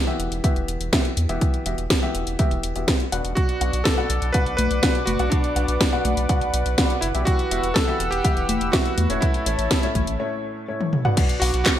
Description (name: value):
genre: italo disco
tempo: 123 BPM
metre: 4/4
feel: straight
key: B minor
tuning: A4 = 440 Hz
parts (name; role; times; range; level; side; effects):
- warm baby grand piano; stabs; 0.1-11.6 s; A2 to F#5; -28 LUFS; left 2 dB; wide subtle chorus
- round analog bass; bass; 0.2-11.6 s; E1 to E2; -25 LUFS; equal; none
- house drum kit; drums; 0.2-11.8 s; congas, crash cymbal, handclaps, hi-hat, snare drum, toms; -24 LUFS; equal; gated reverb
- electronic kick drum; drums; 0.4-11.8 s; none; -22 LUFS; equal; none
- clear electric grand piano; melody; 3.4-11.8 s; D4 to B4; -27 LUFS; right 1 dB; digital delay
- warm analog pad; sustained chords; 3.4-11.8 s; B4 to E6; -29 LUFS; equal; chorus
room: light reverb, digital ambience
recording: bright 1980s-style digital production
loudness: -19 LUFS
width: side -11 dB against mid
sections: 0.0-11.2 A section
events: break 10.2-11.2; drum fill 10.8-11.2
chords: 0.0 Emadd9; 3.4 Bm; 7.3 Emadd9; 9.2 A; 11.2 Bm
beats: 0.44 0.93 | 1.42 1.90 2.39 2.88 | 3.37 3.85 4.34 4.83 | 5.32 5.80 6.29 6.78 | 7.27 7.76 8.24 8.73 | 9.22 9.71 10.20 10.68 | 11.17 11.66